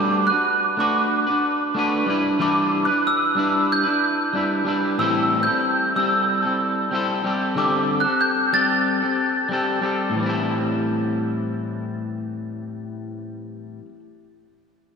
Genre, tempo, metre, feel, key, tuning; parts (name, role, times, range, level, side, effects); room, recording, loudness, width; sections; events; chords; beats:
indie pop; 93 BPM; 4/4; straight; A dorian; A4 = 440 Hz
glockenspiel with rubber mallets; melody; 0.0-9.5 s; D6 to A6; -21 LUFS; right 2 dB; ensemble chorus, analog delay
electric guitar at the edge of break-up; accompaniment; 0.0-14.0 s; A2 to B4; -22 LUFS; left 1 dB; lush chorus, vibrato effect
wet lush hall reverb, RT60 2.9 s; dreamy mix soaked in reverb; -19 LUFS; side -6 dB against mid
0.0-10.1 A section; 10.1-12.7 B section
0.0 Gmaj9; 2.1 Em7; 5.0 Am7; 7.2 D7sus4; 10.1 Am7
0.47 1.11 1.75 | 2.40 3.04 3.69 4.33 | 4.97 5.62 6.27 6.91 | 7.56 8.20 8.85 9.49 | 10.14 10.79 11.44 12.08